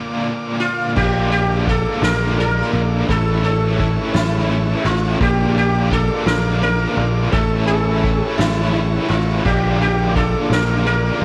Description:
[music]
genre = psychedelic rock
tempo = 57 BPM (dotted quarters)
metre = 6/8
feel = straight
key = unclear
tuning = A4 = 440 Hz
[part]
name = sitar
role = melody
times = 0.0-11.2 s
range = E4 to D5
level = -24 LUFS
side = equal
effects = slapback echo
[part]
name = combo organ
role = sustained chords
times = 0.0-11.2 s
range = Bb3 to D6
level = -33 LUFS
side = equal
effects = none
[part]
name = overdriven electric guitar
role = riff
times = 0.0-11.2 s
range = A2 to F4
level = -25 LUFS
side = equal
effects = tremolo
[part]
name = picked electric bass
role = bass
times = 1.0-11.2 s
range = A1 to Bb1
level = -21 LUFS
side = equal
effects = none
[part]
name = soft-mallet drum kit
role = drums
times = 1.0-11.2 s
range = crash cymbal, kick drum, ride cymbal, snare drum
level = -26 LUFS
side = equal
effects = none
[sound]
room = small room ambience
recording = none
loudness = -18 LUFS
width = mono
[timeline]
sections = 1.0-11.2 A section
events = break 0.0-1.0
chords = 0.0 Bb; 3.1 A; 5.2 Bb; 7.3 A; 9.4 Bb

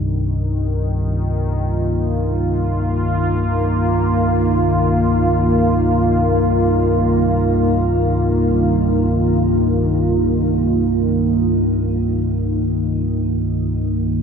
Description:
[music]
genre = dark ambient drone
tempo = free time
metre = none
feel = none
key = unclear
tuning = A4 = 439 Hz
[part]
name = sweeping resonant pad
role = sustained chords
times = 0.0-14.2 s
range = Eb3 to F4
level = -17 LUFS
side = equal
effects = chorus, shimmer reverb
[part]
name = deep rumbling drone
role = drone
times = 0.0-14.2 s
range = C2 to G2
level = -19 LUFS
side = equal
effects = built-in reverb, lush chorus
[sound]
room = wet huge ambient reverb, RT60 8.0 s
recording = dark, warm production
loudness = -15 LUFS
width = side -6 dB against mid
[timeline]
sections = 0.0-14.2 A section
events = none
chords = 0.0 Eb6

